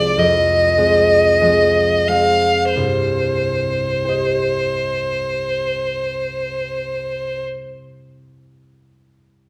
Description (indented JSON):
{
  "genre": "classical, romantic duo for violin and harp",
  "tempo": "43-52 BPM",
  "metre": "4/4",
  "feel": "rubato",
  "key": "C minor",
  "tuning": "A4 = 444 Hz",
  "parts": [
    { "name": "rich violin", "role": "melody", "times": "0.0-7.4 s", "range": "C5 to F5", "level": "-19 LUFS", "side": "equal", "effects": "none" },
    { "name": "concert harp", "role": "accompaniment", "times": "0.0-8.8 s", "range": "C2 to Eb5", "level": "-22 LUFS", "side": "equal", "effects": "none" }
  ],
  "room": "wet recital hall reverb, RT60 1.4 s",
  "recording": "none",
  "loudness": "-18 LUFS",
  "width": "mono",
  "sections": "0.0-2.8 A section; 2.8-8.1 B section",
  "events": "slowing down 0.0-2.8",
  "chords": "0.0 Fm/C; 2.8 Cm",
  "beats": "0.18 1.41 | 2.76 4.06 5.36 6.71"
}